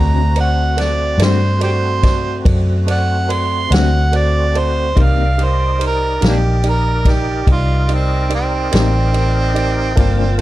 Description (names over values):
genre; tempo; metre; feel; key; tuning
slow blues; 48 BPM (dotted quarters); 12/8; straight; unclear; A4 = 440 Hz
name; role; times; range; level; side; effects
warm harmonica; melody; 0.0-10.4 s; Bb3 to C6; -20 LUFS; right 3 dB; overdrive
electric guitar through a small old amp; accompaniment; 0.0-10.2 s; G2 to F#4; -24 LUFS; left 7 dB; tremolo
warm upright piano; accompaniment; 0.0-10.4 s; A3 to F5; -26 LUFS; right 4 dB; none
tonewheel organ; sustained chords; 0.0-10.4 s; A3 to A5; -25 LUFS; equal; overdrive, chorus vibrato, slow rotary speaker
vintage muted fingered electric bass; bass; 0.0-10.4 s; G1 to G2; -16 LUFS; equal; none
vintage drum kit; drums; 0.4-10.4 s; kick drum, ride cymbal, snare drum; -19 LUFS; equal; none
room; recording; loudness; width
little or no reverb; dark, warm production; -13 LUFS; side -16 dB against mid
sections
0.0-10.4 A section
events
harmonica solo 0.0-10.4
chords
0.0 D7; 5.0 Cm7